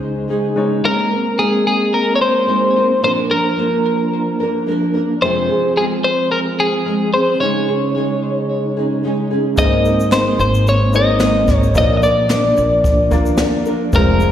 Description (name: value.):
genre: acoustic pop.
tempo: 110 BPM.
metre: 4/4.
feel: swing 55% on 16ths.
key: Ab major.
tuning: A4 = 438 Hz.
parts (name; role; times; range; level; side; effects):
twelve-string electric guitar; melody; 0.0-14.3 s; Ab4 to Eb5; -17 LUFS; left 1 dB; slapback echo, tape echo.
nylon-string guitar; accompaniment; 0.0-14.3 s; F2 to Bb4; -20 LUFS; right 1 dB; double-tracked left and right, slapback echo.
warm upright piano; accompaniment; 0.0-0.9, 9.6-14.3 s; Ab3 to D5; -22 LUFS; left 5 dB; slapback echo.
mellow tonewheel organ; sustained chords; 0.0-14.3 s; Db3 to Ab4; -22 LUFS; right 2 dB; chorus vibrato, fast rotary speaker.
upright bass; bass; 9.6-14.3 s; F1 to Eb2; -18 LUFS; equal; none.
jazz brush drum kit; drums; 9.6-14.3 s; kick drum, shaker, snare drum; -19 LUFS; equal; none.
group handclap; percussion; 10.1-13.5 s; none; barely audible; none; none.
room: light reverb, small room ambience.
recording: live gig heard through the venue's PA, recital hall reverb.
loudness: -13 LUFS.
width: side -10 dB against mid.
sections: 0.8-14.3 A section.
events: break 0.0-0.8.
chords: 0.0 Dbsus2; 0.8 Abadd9; 3.0 Bb; 5.2 Fm; 7.4 Dbsus2; 9.6 Abadd9; 11.8 Bb.